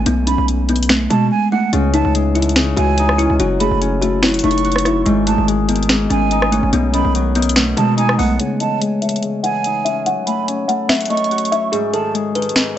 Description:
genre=hip hop, trap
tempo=144 BPM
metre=4/4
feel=half-time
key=C# minor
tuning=A4 = 440 Hz
part: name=kalimba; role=melody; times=0.0-12.5 s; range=G#3 to G#5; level=-18 LUFS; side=equal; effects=low-pass filter
part: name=breathy mellow concert flute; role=second line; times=0.0-12.1 s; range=F#5 to C#6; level=-23 LUFS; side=right 8 dB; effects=tape echo
part: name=hard-hitting 808-style bass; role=bass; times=0.0-8.4 s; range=F#1 to B2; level=-19 LUFS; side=equal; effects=none
part: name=trap drum kit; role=drums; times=0.1-12.7 s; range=finger snaps, hi-hat, rim click, snare drum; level=-19 LUFS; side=equal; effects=none
part: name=Celtic harp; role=accompaniment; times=1.7-12.8 s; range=G#2 to F#4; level=-21 LUFS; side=left 6 dB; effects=low-pass filter
room=moderate spring reverb, RT60 2.4 s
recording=nothing above 8.0 kHz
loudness=-14 LUFS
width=side -11 dB against mid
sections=0.0-8.4 A section; 8.4-12.8 B section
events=break 1.3-1.7; filter sweep 8.4-12.8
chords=0.1 Amaj9/B; 1.7 C#madd9; 3.4 F#m7; 5.1 G#sus4; 6.7 B; 8.4 C#madd9; 10.1 F#m7; 11.7 G#sus4

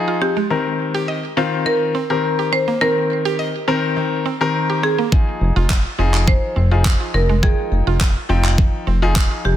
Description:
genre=dance-pop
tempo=104 BPM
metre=4/4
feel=straight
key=F minor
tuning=A4 = 443 Hz
part: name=marimba with hard mallets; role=melody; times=0.0-9.6 s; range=G4 to C5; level=-21 LUFS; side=right 1 dB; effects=digital delay
part: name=bright concert grand piano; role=accompaniment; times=0.0-9.6 s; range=Eb3 to G5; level=-21 LUFS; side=left 4 dB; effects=sidechain pumping
part: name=mallet-like synth pluck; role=arpeggios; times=0.1-9.5 s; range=Eb3 to Eb5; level=-25 LUFS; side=right 4 dB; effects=chorus, sidechain pumping, digital delay
part: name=pop drum kit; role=drums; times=5.1-9.3 s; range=handclaps, kick drum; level=-17 LUFS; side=equal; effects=overdrive
part: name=chorused synth bass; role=bass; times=5.4-9.6 s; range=F1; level=-17 LUFS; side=equal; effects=sidechain pumping
room=little or no reverb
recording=dense, heavily limited modern master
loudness=-15 LUFS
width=side -11 dB against mid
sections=0.0-9.6 A section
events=none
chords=0.0 Fm7; 0.5 Cm7; 5.1 Fm7

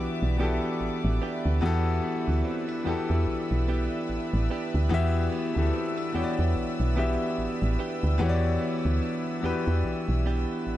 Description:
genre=R&B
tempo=73 BPM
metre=4/4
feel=swing 58% on 16ths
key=E minor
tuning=A4 = 442 Hz
part: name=clear concert grand piano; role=accompaniment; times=0.0-10.8 s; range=E3 to E5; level=-29 LUFS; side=left 3 dB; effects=none
part: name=warm studio string section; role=sustained chords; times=0.0-10.8 s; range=B4 to E6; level=-38 LUFS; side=left 1 dB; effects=none
part: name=direct-recorded clean electric guitar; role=arpeggios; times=0.0-10.8 s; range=E3 to G4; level=-34 LUFS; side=right 9 dB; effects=tape echo
part: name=woody FM bass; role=bass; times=0.0-10.8 s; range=A1 to E2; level=-26 LUFS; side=equal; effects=none
room=studio reverb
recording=dark, warm production, nothing above 10.6 kHz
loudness=-24 LUFS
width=side -14 dB against mid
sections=0.0-10.8 A section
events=none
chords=0.0 Em7

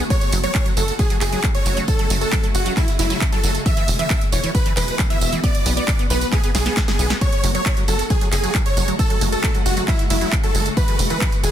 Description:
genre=uplifting trance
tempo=135 BPM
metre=4/4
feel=straight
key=F# minor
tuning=A4 = 439 Hz
part: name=shimmering ambient pad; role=sustained chords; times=0.0-11.5 s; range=C#3 to F#4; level=-28 LUFS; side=left 1 dB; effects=chorus, built-in reverb, sidechain pumping
part: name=liquid acid bass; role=arpeggios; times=0.0-11.5 s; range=E3 to B3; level=-29 LUFS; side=right 2 dB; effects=chorus, sidechain pumping, ping-pong delay
part: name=tight sequencer bass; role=bass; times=0.0-11.5 s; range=E1 to B1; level=-22 LUFS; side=equal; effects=sidechain pumping
part: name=big supersaw lead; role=melody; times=0.1-11.5 s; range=E4 to E5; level=-25 LUFS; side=right 1 dB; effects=sidechain pumping, ping-pong delay
part: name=wide unison pluck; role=second line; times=0.1-11.5 s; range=E4 to E5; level=-31 LUFS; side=equal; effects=none
part: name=electronic kick drum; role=drums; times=0.1-11.3 s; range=none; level=-20 LUFS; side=equal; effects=none
part: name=techno drum kit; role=drums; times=0.1-11.5 s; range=handclaps, hi-hat, snare drum, tambourine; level=-24 LUFS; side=right 2 dB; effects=sidechain pumping on hats, sidechain pumping on perc, sidechain pumping on cymbals
room=little or no reverb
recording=dense, heavily limited modern master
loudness=-16 LUFS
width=side -10 dB against mid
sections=0.0-11.5 A section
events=drum fill 6.5-7.2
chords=0.1 F#madd9; 3.7 Eadd9; 5.4 Bm7; 7.2 F#madd9; 10.8 Eadd9

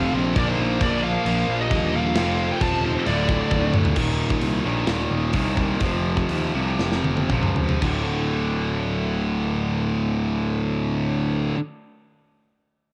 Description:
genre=heavy metal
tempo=112-133 BPM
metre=4/4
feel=straight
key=D phrygian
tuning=A4 = 440 Hz
part: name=high-gain lead guitar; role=melody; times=0.0-3.7 s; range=C5 to A5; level=-30 LUFS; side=equal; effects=distortion, cassette tape
part: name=high-gain lead guitar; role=second line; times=0.0-3.7 s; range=Eb4 to C5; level=-38 LUFS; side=equal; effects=none
part: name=heavy high-gain guitar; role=riff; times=0.0-11.6 s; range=D2 to Bb3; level=-27 LUFS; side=equal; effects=distortion, cassette tape
part: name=high-gain distorted guitar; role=riff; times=0.0-11.6 s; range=D2 to Bb3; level=-33 LUFS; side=equal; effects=distortion, cassette tape
part: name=high-gain distorted guitar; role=riff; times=0.0-4.0 s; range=D2 to Bb4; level=-35 LUFS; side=equal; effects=none
part: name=fuzz picked electric bass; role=bass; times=0.0-11.5 s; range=D1 to Eb2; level=-28 LUFS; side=equal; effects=overdrive
part: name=tight metal drum kit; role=drums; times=0.4-7.9 s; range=crash cymbal, hi-hat, kick drum, snare drum, toms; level=-28 LUFS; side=equal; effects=cassette tape
room=small room ambience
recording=home recording on cassette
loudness=-23 LUFS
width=mono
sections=0.0-4.0 A section; 4.0-7.8 B section; 7.8-12.1 C section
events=half time 0.0-4.0; drum fill 3.5-4.0, 6.8-7.8; slowing down 4.0-7.8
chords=0.4 Bb; 2.2 F; 3.1 Dm; 4.0 Eb5; 5.8 F5; 7.8 D5

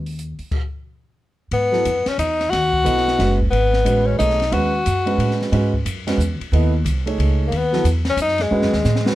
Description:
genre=modal jazz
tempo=180 BPM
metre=3/4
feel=swing 63% on 8ths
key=G# phrygian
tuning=A4 = 440 Hz
part: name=upright bass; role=bass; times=0.0-9.2 s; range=F#1 to A2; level=-20 LUFS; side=right 1 dB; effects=none
part: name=open jazz drum kit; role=drums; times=0.1-9.2 s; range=crash cymbal, hi-hat, kick drum, ride cymbal, snare drum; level=-28 LUFS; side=left 1 dB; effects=none
part: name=clear tenor saxophone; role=melody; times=1.5-5.4, 7.5-9.2 s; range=G#3 to F#4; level=-19 LUFS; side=left 3 dB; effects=none
part: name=warm grand piano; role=accompaniment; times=1.7-9.2 s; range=F#3 to D#5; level=-22 LUFS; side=right 3 dB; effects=none
room=light reverb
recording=none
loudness=-16 LUFS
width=side -15 dB against mid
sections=0.0-1.5 A section; 1.5-9.2 B section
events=drum fill 8.5-9.2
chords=0.0 N.C.; 1.5 G#m7

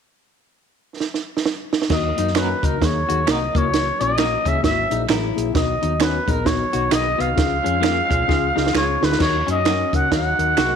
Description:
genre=uptempo 1960s-style soul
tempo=132 BPM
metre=4/4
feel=swing 60% on 8ths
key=Eb minor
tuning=A4 = 440 Hz
part: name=compact cocktail drum kit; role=drums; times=1.0-10.7 s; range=crash cymbal, hi-hat, kick drum, snare drum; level=-22 LUFS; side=right 4 dB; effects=none
part: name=growling trumpet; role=melody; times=1.9-10.8 s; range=Bb4 to Gb5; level=-22 LUFS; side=equal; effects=none
part: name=mellow tine electric piano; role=accompaniment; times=1.9-10.8 s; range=Bb3 to Db5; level=-26 LUFS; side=left 13 dB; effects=medium stereo tremolo
part: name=percussive tonewheel organ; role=sustained chords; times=1.9-10.8 s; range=Eb3 to Gb4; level=-33 LUFS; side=right 13 dB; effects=slow rotary speaker, overdrive, chorus vibrato
part: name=hollow-body short-scale fingered electric bass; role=bass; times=1.9-10.8 s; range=Ab1 to Gb2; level=-25 LUFS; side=left 1 dB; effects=none
part: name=electric guitar through a small old amp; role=riff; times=2.2-10.7 s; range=Bb3 to Gb4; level=-28 LUFS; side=left 13 dB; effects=none
part: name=finger snaps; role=percussion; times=2.3-10.7 s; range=none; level=-31 LUFS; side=right 13 dB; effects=none
part: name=electric guitar through a small old amp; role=stabs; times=2.4-10.7 s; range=Gb3 to B4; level=-30 LUFS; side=right 10 dB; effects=tremolo
room=light reverb, studio reverb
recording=1960s-style stereo with parts hard left and right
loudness=-17 LUFS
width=side -7 dB against mid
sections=0.1-1.9 A section; 1.9-9.2 B section; 9.2-10.8 C section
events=drum fill 1.0-1.9, 8.3-9.2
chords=0.1 N.C.; 1.9 Ebm; 3.5 Gb7; 5.6 B; 7.4 Db; 9.2 Ebm

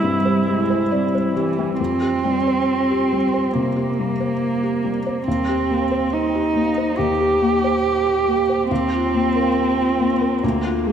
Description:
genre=neoclassical piano and strings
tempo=69 BPM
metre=4/4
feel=rubato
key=unclear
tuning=A4 = 441 Hz
part: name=muted cello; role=second line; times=0.0-10.9 s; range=E3 to G4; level=-20 LUFS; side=right 3 dB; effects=none
part: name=felt-muted upright piano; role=accompaniment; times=0.0-10.9 s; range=C2 to E5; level=-21 LUFS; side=left 2 dB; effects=analog chorus
part: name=muted viola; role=accompaniment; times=0.0-1.6 s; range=E4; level=-25 LUFS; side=right 2 dB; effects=none
part: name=marimba with soft mallets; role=arpeggios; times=0.0-1.7 s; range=C4 to G4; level=-26 LUFS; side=left 5 dB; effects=diffuse ambient delay
room=wet lush hall reverb, RT60 3.0 s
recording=dreamy mix soaked in reverb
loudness=-17 LUFS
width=side -8 dB against mid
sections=0.0-1.8 A section; 1.8-10.9 B section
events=none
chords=0.0 C; 1.8 Fsus2; 5.3 Cm7/Eb; 8.7 Ebsus2

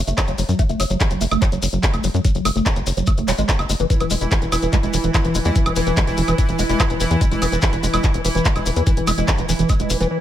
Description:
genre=psychedelic trance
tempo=145 BPM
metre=4/4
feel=straight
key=unclear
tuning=A4 = 440 Hz
part: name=tight sequencer bass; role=bass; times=0.0-10.1 s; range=E1 to F#2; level=-22 LUFS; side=equal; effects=none
part: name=liquid acid bass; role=riff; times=0.1-10.2 s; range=E3 to A3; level=-23 LUFS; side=moving between left 8 dB and right 6 dB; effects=phaser, auto-pan, sidechain pumping, dub echo
part: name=drum and bass drum kit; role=drums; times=0.1-10.1 s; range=handclaps, hi-hat, woodblock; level=-24 LUFS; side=right 1 dB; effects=none
part: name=maracas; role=percussion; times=0.1-10.1 s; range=none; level=-30 LUFS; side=left 5 dB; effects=none
part: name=electronic kick drum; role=drums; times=0.2-9.8 s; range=none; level=-18 LUFS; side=equal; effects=none
part: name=pulsing gated texture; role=sustained chords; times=3.9-10.1 s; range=E3 to E4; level=-24 LUFS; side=equal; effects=chorus, built-in reverb, sidechain pumping
room=light reverb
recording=none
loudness=-16 LUFS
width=side -11 dB against mid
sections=0.0-10.2 A section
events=filter sweep on acid bass 0.0-10.2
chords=0.0 N.C.; 3.9 E

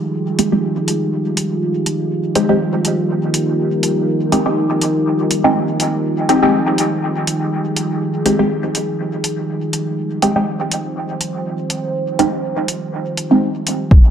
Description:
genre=dub techno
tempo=122 BPM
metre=4/4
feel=swing 55% on 16ths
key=F minor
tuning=A4 = 441 Hz
part: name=deep dark ambient pad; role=sustained chords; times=0.0-13.9 s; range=Eb4 to C5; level=-19 LUFS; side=right 1 dB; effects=chorus, built-in reverb, sidechain pumping
part: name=filtered dub chord stab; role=stabs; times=0.4-13.5 s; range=Ab3 to G4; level=-17 LUFS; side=equal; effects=phaser, sidechain pumping, dub echo
part: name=electronic hi-hat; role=drums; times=0.4-13.8 s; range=none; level=-20 LUFS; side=equal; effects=studio ambience
part: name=round analog bass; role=bass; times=13.9-14.0 s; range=F1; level=-20 LUFS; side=equal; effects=sidechain pumping
part: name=electronic kick drum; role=drums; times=13.9-14.0 s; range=none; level=-6 LUFS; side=equal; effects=studio ambience
room=moderate echo chamber reverb, RT60 1.8 s, digital ambience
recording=dark, warm production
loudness=-15 LUFS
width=side -8 dB against mid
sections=0.0-13.9 A section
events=filter sweep on ambient pad 0.0-13.9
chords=0.0 Fm9

